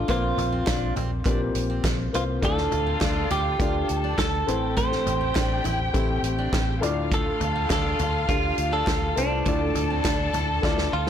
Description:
piano-driven pop; 102 BPM; 4/4; straight; D minor; A4 = 440 Hz
direct-recorded clean electric guitar; melody; 0.0-11.1 s; D4 to C5; -28 LUFS; right 2 dB; wide subtle chorus
dark upright piano; accompaniment; 0.0-11.1 s; A2 to D5; -29 LUFS; left 5 dB
vintage muted fingered electric bass; bass; 0.0-11.1 s; A1 to D2; -28 LUFS; equal
picked steel-string acoustic guitar; riff; 0.1-11.1 s; A3 to F4; -35 LUFS; right 7 dB
natural country drum kit; drums; 0.1-11.1 s; hi-hat, kick drum, snare drum, toms; -28 LUFS; equal; soft clipping on snare
group handclap; percussion; 0.7-10.2 s; -40 LUFS; right 4 dB
warm studio violin section; second line; 2.4-11.1 s; F4 to A5; -31 LUFS; left 3 dB
light reverb, small room ambience; blown-out, overdriven recording, overdrive; -22 LUFS; side -9 dB against mid
0.0-11.1 A section
drum fill 10.6-11.1
0.1 Bbsus2; 2.4 Dm; 4.5 Am; 6.8 Dm; 9.5 Dmadd9

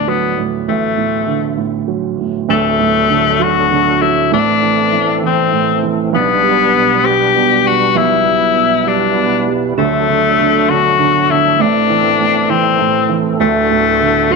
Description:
six-eight pop ballad; 66 BPM (dotted quarters); 6/8; straight; A4 = 440 Hz
bright tenor saxophone; melody; 0.0-14.4 s; A3 to G4; -13 LUFS; left 10 dB
dark upright piano; accompaniment; 0.0-14.4 s; D1 to G3; -16 LUFS; right 11 dB
percussive tonewheel organ; sustained chords; 2.5-14.4 s; B2 to B4; -20 LUFS; right 2 dB; chorus vibrato, slow rotary speaker
wet echo chamber reverb, RT60 1.7 s; 1960s-style stereo with parts hard left and right; -11 LUFS; side -3 dB against mid
0.0-2.5 A section; 2.5-14.4 B section
0.0 D; 4.3 Am; 6.1 G/B; 9.8 D; 11.6 Am; 13.4 D

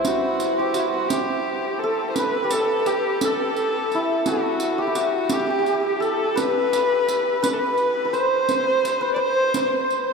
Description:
Persian modal ensemble; 57 BPM (dotted quarters); 6/8; straight; G dastgah mahur; A4 = 440 Hz
santur; melody; 0.0-10.1 s; E4 to C5; -22 LUFS; equal; analog delay
rich kamancheh; second line; 0.0-9.9 s; E4 to D5; -24 LUFS; left 2 dB; analog delay
riq; percussion; 0.0-10.0 s; -30 LUFS; right 5 dB
wet huge ambient reverb, RT60 8.2 s; dreamy mix soaked in reverb; -19 LUFS; side -4 dB against mid
0.0-10.1 A section

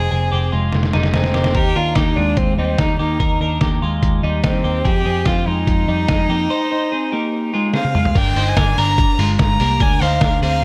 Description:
jangly indie pop; 146 BPM; 4/4; straight; A4 = 439 Hz
warm violin; melody; 0.0-10.6 s; C4 to Bb5; -24 LUFS; equal
twelve-string electric guitar; arpeggios; 0.0-10.6 s; G3 to C5; -24 LUFS; equal; spring reverb
vintage muted picked electric bass; bass; 0.0-10.6 s; F1 to F2; -22 LUFS; equal
lo-fi sampler-style drum kit; drums; 0.7-10.5 s; crash cymbal, hi-hat, kick drum, snare drum, toms; -21 LUFS; equal
light reverb, digital ambience; -17 LUFS; mono
0.0-8.2 A section; 8.2-10.6 B section
drum fill 0.7-1.6, 7.7-8.2
0.0 Fm7; 1.6 Eb6; 4.9 Fm7; 8.2 Gm7; 9.8 Dm7b5

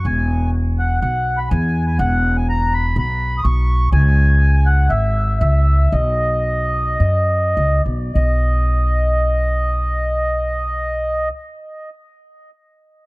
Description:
indie folk with a building arrangement; 99-124 BPM; 4/4; straight; B major; A4 = 440 Hz
mellow accordion; melody; 0.0-11.3 s; D#5 to D#6; -20 LUFS; equal; analog delay
upright bass; bass; 0.0-11.3 s; E1 to F#2; -16 LUFS; equal
light reverb, small room ambience; dark, warm production; -15 LUFS; side -23 dB against mid
0.0-8.2 A section; 8.2-13.0 B section
slowing down 3.9-8.2
0.0 E; 3.9 C#m; 5.9 B

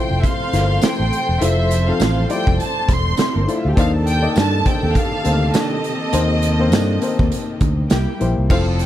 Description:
lush 1970s-style soul; 102 BPM; 4/4; swing 58% on 16ths; A4 = 440 Hz
rich studio violin section; melody; 0.0-8.9 s; Eb5 to C6; -24 LUFS; equal
warm studio string section; second line; 0.0-8.9 s; Bb3 to C6; -27 LUFS; right 3 dB
warm baby grand piano; accompaniment; 0.0-8.9 s; G3 to Eb5; -24 LUFS; left 4 dB
warm studio string section; sustained chords; 0.0-8.5 s; C3 to A4; -28 LUFS; left 1 dB
fingered electric bass; bass; 0.1-8.9 s; E1 to G2; -18 LUFS; equal
modern studio drum kit; drums; 0.2-8.9 s; crash cymbal, hi-hat, kick drum, snare drum; -20 LUFS; equal
mellow electric guitar; riff; 0.8-8.1 s; Eb3 to A4; -25 LUFS; right 4 dB; spring reverb
tambourine; percussion; 0.8-8.1 s; -36 LUFS; left 10 dB
little or no reverb; -15 LUFS; side -12 dB against mid
0.0-8.5 A section
0.0 C7; 3.8 Cm9; 7.9 C7

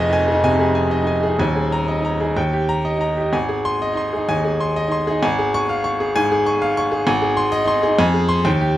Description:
classical, virtuoso piano study; 127 BPM; 4/4; uneven beats, rubato; Ab major; A4 = 440 Hz
clear baby grand piano; solo; 0.0-8.8 s; Eb1 to Db6; -16 LUFS; equal
light reverb; close, detailed microphones; -16 LUFS; side -14 dB against mid
0.0-8.8 A section
0.0 Fm7; 1.4 Ebsus4; 2.4 Eb; 3.3 Ab; 5.2 Db/Ab; 7.1 Ab; 8.0 Fm

